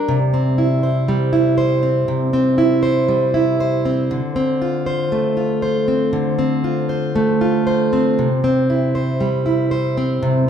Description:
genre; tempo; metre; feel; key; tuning
pop; 59 BPM; 4/4; straight; unclear; A4 = 440 Hz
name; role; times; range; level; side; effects
fingerpicked plugged-in steel-string acoustic guitar; solo; 0.0-10.5 s; C3 to C5; -15 LUFS; equal; none
room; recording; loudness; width
moderate large studio reverb, RT60 1.1 s; band playing live in one room; -15 LUFS; side -8 dB against mid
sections
0.0-10.5 A section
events
none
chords
0.1 C; 4.1 Dm7

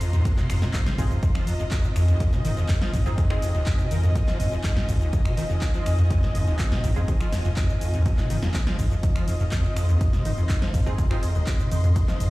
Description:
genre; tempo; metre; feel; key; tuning
acid house; 123 BPM; 4/4; straight; F minor; A4 = 441 Hz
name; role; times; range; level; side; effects
string machine, full ensemble; sustained chords; 0.0-12.3 s; Eb5 to C6; -35 LUFS; equal; ensemble chorus, sidechain pumping
deep acid bass; riff; 0.0-12.3 s; Eb2 to F3; -25 LUFS; equal; ensemble chorus, sidechain pumping
round analog bass; bass; 0.0-12.3 s; F1 to F2; -27 LUFS; equal; tube saturation, sidechain pumping
punchy analog drum machine; drums; 0.0-12.3 s; finger snaps, handclaps, hi-hat, ride cymbal, shaker, snare drum, toms; -30 LUFS; equal; none
rich symphonic string section; texture; 0.0-12.3 s; C4 to C6; -37 LUFS; left 1 dB; sidechain pumping
electronic kick drum; drums; 0.3-12.1 s; none; -24 LUFS; equal; none
filtered dub chord stab; stabs; 1.0-3.5, 7.0-7.2, 10.9-11.3 s; C4 to Ab4; -36 LUFS; right 1 dB; analog chorus, ping-pong delay
room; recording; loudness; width
light reverb, digital ambience; played on a big sound system in a bare room, stone room reverb; -21 LUFS; side -19 dB against mid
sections
0.0-12.3 A section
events
drum fill 0.9-1.2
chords
0.0 Fm7

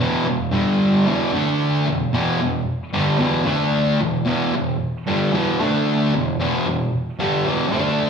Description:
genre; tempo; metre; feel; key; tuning
rock; 113 BPM; 4/4; straight; E minor; A4 = 440 Hz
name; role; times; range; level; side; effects
fuzz guitar; solo; 0.0-8.1 s; E2 to D4; -18 LUFS; equal; distortion
room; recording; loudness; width
wet large studio reverb, RT60 1.3 s; band playing live in one room, small room reverb; -18 LUFS; side -6 dB against mid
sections
0.0-8.1 A section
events
none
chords
0.0 E5; 0.5 G5; 1.1 E5; 1.3 D5; 1.9 Em; 3.5 D5; 4.0 Em; 5.6 D5; 6.1 Em

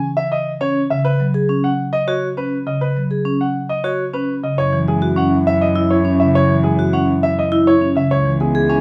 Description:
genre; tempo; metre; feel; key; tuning
classical, minimalist pattern music; 102 BPM; 3/4; straight; unclear; A4 = 440 Hz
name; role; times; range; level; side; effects
bright grand piano; melody; 0.0-8.8 s; G#4 to G#5; -23 LUFS; equal; none
vibraphone with medium hard mallets; arpeggios; 0.6-8.8 s; C#4 to G#4; -21 LUFS; equal; none
marimba with soft mallets; accompaniment; 0.9-8.6 s; C#3 to B3; -23 LUFS; equal; none
warm French horn; second line; 4.6-8.8 s; E4; -26 LUFS; equal; none
rich cello; bass; 4.6-8.8 s; C#2 to F#2; -23 LUFS; equal; none
room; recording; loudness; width
moderate large studio reverb, RT60 0.9 s; none; -17 LUFS; mono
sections
0.0-4.6 A section; 4.6-8.8 B section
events
none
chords
0.0 C#m; 1.1 B69; 4.6 F#5; 8.1 C#m7

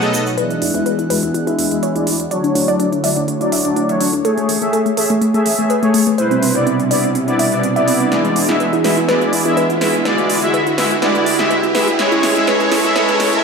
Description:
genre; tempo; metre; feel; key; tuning
progressive house; 124 BPM; 4/4; straight; E mixolydian; A4 = 440 Hz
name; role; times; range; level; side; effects
warm analog pad; sustained chords; 0.0-13.4 s; B2 to C#5; -21 LUFS; equal; chorus
glassy wavetable pluck; arpeggios; 0.0-13.4 s; A3 to E5; -18 LUFS; equal; chorus, ping-pong delay
soft supersaw; stabs; 0.0-13.4 s; F#3 to E5; -18 LUFS; left 1 dB; low-pass filter, ping-pong delay
big-room dance drum kit; drums; 0.4-13.4 s; hi-hat, snare drum; -22 LUFS; right 2 dB; overdrive, low-pass filter on snare, low-pass filter on hats, low-pass filter on room
riser; sound effects; 5.2-13.4 s; none; -25 LUFS; right 2 dB; none
round analog bass; bass; 0.6-13.4 s; E1 to E2; -34 LUFS; equal; none
room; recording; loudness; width
moderate digital room reverb, RT60 1.1 s; high-pass filter; -13 LUFS; side -5 dB against mid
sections
0.4-13.4 A section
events
build-up 0.4-13.4; filter sweep on synth arpeggio sound 0.4-13.4; filter sweep on supersaw synth 0.4-13.4; filter sweep on analog synth pad 0.4-13.4; riser 5.2-13.4; drum fill 8.1-13.4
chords
0.4 E7; 2.3 Dmaj7; 4.2 Amaj7; 6.2 Cmaj7; 8.1 E7; 10.1 D; 12.0 Amaj7

